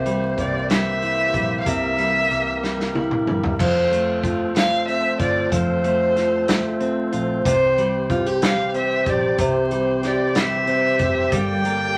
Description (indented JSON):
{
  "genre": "six-eight pop ballad",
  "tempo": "62 BPM (dotted quarters)",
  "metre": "6/8",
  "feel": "straight",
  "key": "F major",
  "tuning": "A4 = 439 Hz",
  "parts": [
    { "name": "dark violin", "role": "melody", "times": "0.0-12.0 s", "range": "C5 to G5", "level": "-24 LUFS", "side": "equal", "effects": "none" },
    { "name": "picked steel-string acoustic guitar", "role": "accompaniment", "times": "0.0-12.0 s", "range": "C3 to G4", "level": "-25 LUFS", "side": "equal", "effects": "none" },
    { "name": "tonewheel organ", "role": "sustained chords", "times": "0.0-12.0 s", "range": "D3 to D5", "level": "-31 LUFS", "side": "equal", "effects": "overdrive, fast rotary speaker" },
    { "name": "vintage muted fingered electric bass", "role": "bass", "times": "0.0-12.0 s", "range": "F1 to C2", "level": "-34 LUFS", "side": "equal", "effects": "none" },
    { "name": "natural country drum kit", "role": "drums", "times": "0.1-11.8 s", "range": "crash cymbal, hi-hat, kick drum, snare drum, toms", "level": "-27 LUFS", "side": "equal", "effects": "none" }
  ],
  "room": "moderate studio reverb, RT60 0.6 s",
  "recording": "vinyl crackle",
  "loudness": "-20 LUFS",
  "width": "mono",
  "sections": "0.0-3.6 A section; 3.6-12.0 B section",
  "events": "drum fill 2.6-3.6",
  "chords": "0.0 C7; 3.6 F; 7.5 C; 11.3 Gm"
}